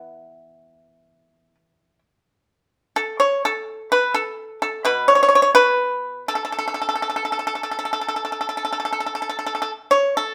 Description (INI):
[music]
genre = chinese traditional, Chinese solo plucked strings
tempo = 56-65 BPM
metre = 4/4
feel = rubato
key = A gong mode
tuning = A4 = 440 Hz
[part]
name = pipa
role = solo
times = 0.0-10.3 s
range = B2 to C#5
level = -20 LUFS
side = equal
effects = none
[sound]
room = moderate studio reverb, RT60 0.9 s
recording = band playing live in one room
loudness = -21 LUFS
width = mono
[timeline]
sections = 0.0-10.3 A section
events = none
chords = none